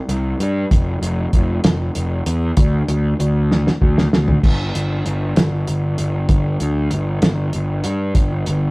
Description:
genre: psychedelic rock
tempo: 64 BPM (dotted quarters)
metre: 6/8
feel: straight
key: unclear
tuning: A4 = 440 Hz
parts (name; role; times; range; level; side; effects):
- fuzz picked electric bass; bass; 0.1-8.7 s; F1 to G2; -18 LUFS; equal; overdrive
- cloth-damped thuddy drum kit; drums; 0.1-8.6 s; crash cymbal, hi-hat, kick drum, snare drum, toms; -16 LUFS; equal; none
room: moderate studio reverb, RT60 0.6 s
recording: rough rehearsal-room recording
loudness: -15 LUFS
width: side -25 dB against mid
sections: 0.0-4.4 A section; 4.4-8.7 B section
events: drum fill 3.5-4.4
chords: none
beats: | 0.71 1.64 | 2.57 3.50 | 4.43 5.36 | 6.29 7.22 | 8.15

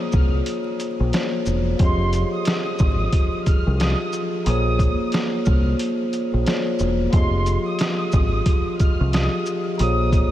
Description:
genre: hip hop, boom-bap hip-hop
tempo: 90 BPM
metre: 4/4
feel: swing 61% on 16ths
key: F minor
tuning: A4 = 445 Hz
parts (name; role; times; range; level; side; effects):
- vibraphone with soft mallets; accompaniment; 0.0-10.3 s; F3 to Eb5; -24 LUFS; left 1 dB; high-pass filter, low-pass filter
- warm studio violin section; melody; 0.1-10.3 s; C6 to F6; -30 LUFS; right 1 dB; high-pass filter, low-pass filter
- deep dub fingered electric bass; bass; 0.1-10.2 s; E1 to C2; -21 LUFS; equal; none
- trip hop sampler-style drum kit; drums; 0.1-10.3 s; hi-hat, kick drum, shaker, snare drum; -22 LUFS; equal; none
room: moderate huge ambient reverb, RT60 7.5 s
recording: dreamy mix soaked in reverb, vinyl crackle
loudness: -18 LUFS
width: side -13 dB against mid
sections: 0.0-10.3 A section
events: none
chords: 0.0 Bbm7; 1.8 Fm7; 4.5 Bbm7; 7.1 Fm7; 9.8 Bbm7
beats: 0.46 1.13 | 1.80 2.46 3.13 3.80 | 4.46 5.13 5.80 6.46 | 7.13 7.80 8.46 9.13 | 9.80

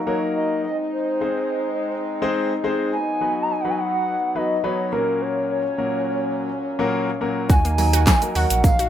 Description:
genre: dance-pop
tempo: 105 BPM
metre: 4/4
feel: straight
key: unclear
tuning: A4 = 440 Hz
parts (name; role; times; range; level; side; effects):
- warm brass ensemble; sustained chords; 0.0-8.9 s; Bb2 to Eb4; -27 LUFS; left 1 dB; sidechain pumping
- hollow clarinet-like synth lead; melody; 0.1-8.9 s; Bb4 to Bb5; -24 LUFS; right 1 dB; chorus
- warm concert grand piano; accompaniment; 0.1-8.7 s; Bb2 to C5; -25 LUFS; left 3 dB; sidechain pumping
- wide unison pluck; arpeggios; 7.5-8.9 s; Gb3 to Gb4; -28 LUFS; right 3 dB; auto-pan, sidechain pumping
- sub bass with octave; bass; 7.5-8.9 s; Bb1 to Eb2; -21 LUFS; right 1 dB; sidechain pumping
- pop drum kit; drums; 7.5-8.9 s; handclaps, hi-hat, kick drum, shaker, snare drum; -18 LUFS; right 1 dB; none
- tambourine; percussion; 7.5-8.8 s; none; -38 LUFS; left 3 dB; none
room: light reverb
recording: rough home demo mix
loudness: -19 LUFS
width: side -10 dB against mid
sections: 0.0-8.9 A section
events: none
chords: 0.0 Ebm; 0.6 Ab; 2.9 B; 4.9 Gb/Bb; 7.5 Ebm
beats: 0.07 | 0.64 1.21 1.78 2.35 | 2.92 3.50 4.07 4.64 | 5.21 5.78 6.35 6.92 | 7.50 8.07 8.64

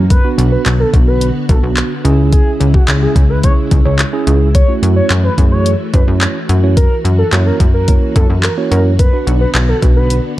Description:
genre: dance-pop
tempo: 108 BPM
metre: 4/4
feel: straight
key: unclear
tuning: A4 = 441 Hz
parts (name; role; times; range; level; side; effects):
- mellow tine electric piano; accompaniment; 0.0-10.2 s; A3 to C#5; -20 LUFS; right 6 dB; sidechain pumping
- ensemble organ-string; sustained chords; 0.0-10.4 s; C#3 to F#4; -23 LUFS; equal; ensemble chorus, sidechain pumping
- plucky analog bass; bass; 0.0-10.2 s; B1 to F#2; -13 LUFS; equal; sidechain pumping
- expressive portamento lead; melody; 0.1-10.1 s; F#4 to C#5; -20 LUFS; equal; chorus, tape echo
- smooth R&B drum kit; drums; 0.1-10.2 s; handclaps, hi-hat, kick drum; -12 LUFS; equal; none
room: little or no reverb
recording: dark, warm production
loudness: -10 LUFS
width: side -15 dB against mid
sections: 0.0-10.4 A section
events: none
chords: 0.1 Bm; 2.0 C#m; 4.5 F#m7; 6.8 F#7; 9.0 Bm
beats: | 0.10 0.66 1.22 1.77 | 2.33 2.88 3.44 3.99 | 4.55 5.10 5.66 6.21 | 6.77 7.33 7.88 8.44 | 8.99 9.55 10.10

